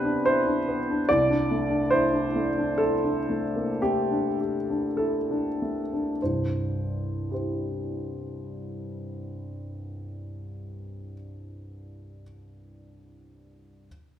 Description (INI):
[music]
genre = classical, impressionist solo piano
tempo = 45-74 BPM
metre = 5/4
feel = rubato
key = C major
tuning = A4 = 440 Hz
[part]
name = warm grand piano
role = solo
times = 0.0-13.9 s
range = C2 to D5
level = -25 LUFS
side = equal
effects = none
[sound]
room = moderate recital hall reverb, RT60 1.5 s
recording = minimal, uncompressed stereo recording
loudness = -24 LUFS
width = side -10 dB against mid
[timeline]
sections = 0.0-6.2 A section; 6.2-11.6 B section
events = slowing down 0.0-6.2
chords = 0.0 Cmaj9; 1.1 C69; 6.2 C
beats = 0.24 | 1.07 1.89 2.79 3.80 4.96 | 6.19 7.27 8.34 9.45 10.55